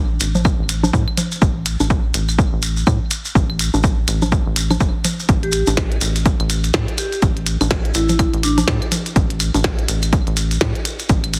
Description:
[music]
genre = minimal techno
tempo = 124 BPM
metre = 4/4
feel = swing 59% on 16ths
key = unclear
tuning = A4 = 441 Hz
[part]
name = rubbery square bass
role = bass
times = 0.0-11.4 s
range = G1 to A2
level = -23 LUFS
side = equal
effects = tube saturation, sidechain pumping
[part]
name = minimal click drum kit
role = drums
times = 0.2-11.4 s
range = hi-hat, snare drum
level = -25 LUFS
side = equal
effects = none
[part]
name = shekere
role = percussion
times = 0.2-11.4 s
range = none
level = -28 LUFS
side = equal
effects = none
[part]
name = congas, claves and bongos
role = percussion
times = 0.3-11.3 s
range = none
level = -24 LUFS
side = equal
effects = tape echo
[part]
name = electronic kick drum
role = drums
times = 0.5-11.2 s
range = none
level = -21 LUFS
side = equal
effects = overdrive
[part]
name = vibraphone with medium hard mallets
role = melody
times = 5.4-8.6 s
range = D4 to G4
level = -26 LUFS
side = equal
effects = vintage 12-bit sampler grit, tape echo
[sound]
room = digital ambience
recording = heavily compressed radio sound, multiband compression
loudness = -18 LUFS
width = mono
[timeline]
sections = 0.0-11.4 A section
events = none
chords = none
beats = 0.45 0.93 | 1.42 1.90 2.38 2.87 | 3.35 3.84 4.32 4.80 | 5.29 5.77 6.26 6.74 | 7.22 7.71 8.19 8.68 | 9.16 9.64 10.13 10.61 | 11.09

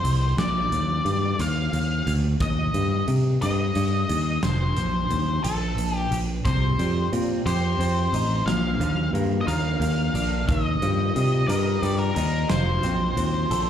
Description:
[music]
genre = quiet-loud alternative rock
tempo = 59 BPM (dotted quarters)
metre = 6/8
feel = straight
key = unclear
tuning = A4 = 440 Hz
[part]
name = octave-fuzz lead guitar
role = melody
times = 0.0-13.7 s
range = A4 to F5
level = -28 LUFS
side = left 2 dB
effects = distortion, slapback echo
[part]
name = picked electric bass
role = bass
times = 0.0-13.7 s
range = F1 to C3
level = -23 LUFS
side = equal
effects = none
[part]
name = huge arena drum kit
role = drums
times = 0.0-13.7 s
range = hi-hat, kick drum, snare drum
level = -30 LUFS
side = equal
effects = none
[part]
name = electric guitar through a small old amp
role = arpeggios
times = 6.5-13.7 s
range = Bb2 to Bb4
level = -29 LUFS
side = equal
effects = wide subtle chorus, slapback echo, digital delay
[sound]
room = light reverb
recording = live gig heard through the venue's PA, club reverb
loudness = -21 LUFS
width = side -9 dB against mid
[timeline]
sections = 0.0-13.7 A section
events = half time 0.0-13.7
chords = 0.4 Bb; 2.4 Eb; 4.4 F; 6.5 Cm; 8.5 Bb; 10.5 Ebadd9; 12.5 F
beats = | 0.39 1.40 | 2.41 3.42 | 4.43 5.44 | 6.45 7.46 | 8.47 9.48 | 10.49 11.50 | 12.50 13.51

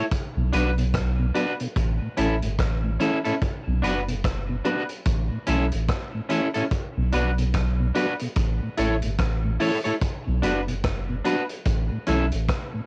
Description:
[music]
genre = roots reggae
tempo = 73 BPM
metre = 4/4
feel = swing 60% on 16ths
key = B minor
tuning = A4 = 440 Hz
[part]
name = electric guitar at the edge of break-up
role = accompaniment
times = 0.0-12.2 s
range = C#4 to C#5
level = -30 LUFS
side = equal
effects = plate reverb
[part]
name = mellow tonewheel organ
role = accompaniment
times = 0.0-12.8 s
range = A2 to D4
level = -32 LUFS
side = equal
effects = chorus vibrato, slow rotary speaker, plate reverb
[part]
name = vintage drum kit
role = drums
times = 0.1-12.7 s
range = hi-hat, kick drum, rim click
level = -31 LUFS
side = equal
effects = vintage 12-bit sampler grit, cassette tape
[part]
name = soft dub sub bass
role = bass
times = 0.4-12.5 s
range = F#1 to B1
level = -27 LUFS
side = equal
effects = none
[sound]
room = light reverb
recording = home recording on cassette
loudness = -25 LUFS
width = mono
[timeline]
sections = 0.0-12.9 A section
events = none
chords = 0.1 Bm; 1.8 A; 3.4 Bm; 5.1 A; 6.7 Bm; 8.4 A; 10.0 Bm; 11.7 A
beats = | 0.11 0.94 1.76 2.59 | 3.41 4.24 5.07 5.89 | 6.71 7.54 8.37 9.19 | 10.02 10.84 11.66 12.49

